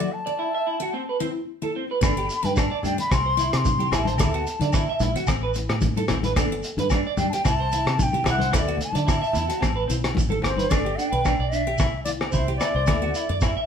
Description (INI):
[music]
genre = highlife guitar band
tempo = 111 BPM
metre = 4/4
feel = swing 54% on 16ths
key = G major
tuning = A4 = 440 Hz
[part]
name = bright bansuri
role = melody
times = 0.0-13.4 s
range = C5 to D6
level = -27 LUFS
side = left 2 dB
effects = none
[part]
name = picked steel-string acoustic guitar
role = accompaniment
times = 0.0-13.5 s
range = F#3 to E4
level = -33 LUFS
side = left 3 dB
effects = none
[part]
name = electric guitar through a small old amp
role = arpeggios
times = 0.0-13.6 s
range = C4 to E5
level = -28 LUFS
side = right 4 dB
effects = none
[part]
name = fingered electric bass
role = bass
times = 2.0-13.7 s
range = G1 to D3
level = -27 LUFS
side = equal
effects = none
[part]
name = cloth-damped thuddy drum kit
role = drums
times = 2.0-13.6 s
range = hi-hat, kick drum, rim click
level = -25 LUFS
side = equal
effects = none
[part]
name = agogo bells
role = percussion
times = 2.0-13.6 s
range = none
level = -34 LUFS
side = left 7 dB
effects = none
[part]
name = congas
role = percussion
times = 2.0-10.7 s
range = none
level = -30 LUFS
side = left 3 dB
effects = none
[part]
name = shekere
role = percussion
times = 2.0-13.5 s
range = none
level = -33 LUFS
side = right 3 dB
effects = none
[sound]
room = moderate studio reverb, RT60 0.7 s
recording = band playing live in one room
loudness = -21 LUFS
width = side -7 dB against mid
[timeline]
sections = 0.0-10.7 A section; 10.7-13.7 B section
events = none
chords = 0.0 Dadd9; 0.9 Amadd9; 2.0 G; 3.1 C; 4.2 Dadd9; 5.3 Amadd9; 6.4 G; 7.5 C; 8.5 Dadd9; 9.6 Amadd9; 10.7 G; 11.8 C; 12.9 Dadd9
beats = 0.40 0.94 1.49 | 2.03 2.57 3.11 3.65 | 4.20 4.74 5.28 5.83 | 6.37 6.91 7.45 7.99 | 8.54 9.08 9.62 10.16 | 10.71 11.25 11.79 12.33 | 12.87 13.41